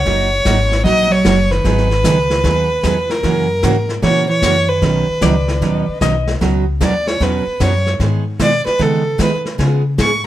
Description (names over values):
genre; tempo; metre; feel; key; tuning
country, western swing; 151 BPM; 4/4; swing 66% on 8ths; B major; A4 = 445 Hz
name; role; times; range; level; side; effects
dark fiddle; melody; 0.0-10.2 s; A4 to C#6; -17 LUFS; equal; plate reverb
hollow-body jazz guitar; second line; 0.0-6.0 s; C#3 to F#3; -22 LUFS; right 2 dB; none
upright bass; bass; 0.0-10.3 s; F#1 to D#3; -18 LUFS; left 1 dB; none
picked steel-string acoustic guitar; accompaniment; 0.1-10.1 s; B2 to G#4; -19 LUFS; right 4 dB; none
vintage brush drum kit; drums; 0.1-10.3 s; brushed snare drum, hi-hat, kick drum, snare drum; -22 LUFS; left 2 dB; none
clean lap steel guitar; second line; 5.2-6.3 s; D5 to D#5; -22 LUFS; left 6 dB; none
room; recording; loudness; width
moderate studio reverb, RT60 0.7 s; none; -13 LUFS; side -13 dB against mid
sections
0.0-6.4 A section; 6.4-10.3 B section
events
fiddle solo 6.4-10.3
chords
0.1 F#6; 1.6 G#m7; 3.2 F#7; 4.8 Badd9; 6.4 Bsus2; 8.0 G#m; 9.6 C#7